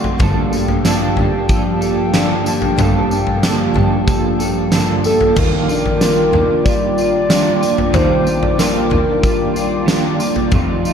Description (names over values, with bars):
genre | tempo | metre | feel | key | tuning
dream pop | 93 BPM | 4/4 | straight | Eb lydian | A4 = 440 Hz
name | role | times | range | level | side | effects
clean electric guitar | accompaniment | 0.0-10.9 s | F2 to A4 | -20 LUFS | right 6 dB | tremolo, analog chorus, shimmer reverb
hollow soft pad | sustained chords | 0.0-10.9 s | F4 to D6 | -22 LUFS | left 2 dB | chorus, shimmer reverb
electric guitar at the edge of break-up | arpeggios | 0.0-10.9 s | F2 to A4 | -20 LUFS | left 3 dB | ensemble chorus, ping-pong delay, shimmer reverb
huge arena drum kit | drums | 0.0-10.9 s | crash cymbal, kick drum, snare drum, tambourine, toms | -18 LUFS | equal | none
dark double bass | bass | 0.2-10.6 s | G1 to F2 | -20 LUFS | equal | none
warbly nostalgic lead | melody | 5.1-10.2 s | A4 to D5 | -18 LUFS | right 1 dB | chorus, ping-pong delay, shimmer reverb
room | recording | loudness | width
moderate lush hall reverb, RT60 2.1 s | dark, warm production | -13 LUFS | side -7 dB against mid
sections
0.0-5.4 A section; 5.4-10.9 B section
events
none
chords
0.2 Gm9; 5.4 Ebmaj9